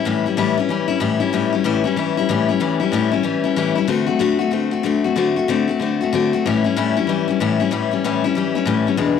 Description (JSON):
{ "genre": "rock", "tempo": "188 BPM", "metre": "4/4", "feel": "swing 63% on 8ths", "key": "A mixolydian", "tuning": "A4 = 436 Hz", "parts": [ { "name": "picked steel-string acoustic guitar", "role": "solo", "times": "0.0-9.2 s", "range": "E2 to F#4", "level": "-17 LUFS", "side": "left 6 dB", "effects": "none" } ], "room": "moderate echo chamber reverb, RT60 1.9 s, small room ambience", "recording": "none", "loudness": "-17 LUFS", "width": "side -7 dB against mid", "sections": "0.0-9.2 A section", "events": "none", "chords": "0.0 A7; 3.9 D7; 6.4 A7" }